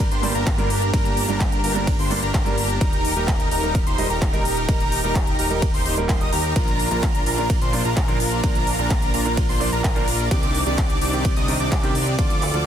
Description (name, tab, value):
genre	EDM, festival progressive house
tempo	128 BPM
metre	4/4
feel	straight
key	unclear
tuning	A4 = 439 Hz
part	lush unison pad	sustained chords	0.1-12.7 s	C3 to D5	-31 LUFS	right 1 dB	chorus, sidechain pumping
part	wide unison lead	arpeggios	0.0-12.7 s	Bb5 to Eb6	-27 LUFS	equal	sidechain pumping, digital delay
part	supersaw chords	riff	0.0-12.7 s	C4 to Eb5	-27 LUFS	equal	lush chorus, sidechain pumping, digital delay
part	fat analog bass	bass	0.0-12.7 s	Eb1 to Eb2	-26 LUFS	equal	sidechain pumping
part	big-room dance drum kit	drums	0.0-12.6 s	handclaps, hi-hat, ride cymbal	-29 LUFS	equal	overdrive
part	electronic kick drum	drums	0.0-12.3 s	none	-21 LUFS	equal	overdrive
part	warm concert grand piano	accompaniment	0.2-12.6 s	G2 to Eb5	-29 LUFS	right 4 dB	sidechain pumping, digital delay
room	digital ambience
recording	dense, heavily limited modern master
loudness	-18 LUFS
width	side -9 dB against mid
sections	0.0-12.7 A section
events	none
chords	0.0 Gm; 2.8 Eb; 6.6 Bb; 10.3 Cmadd9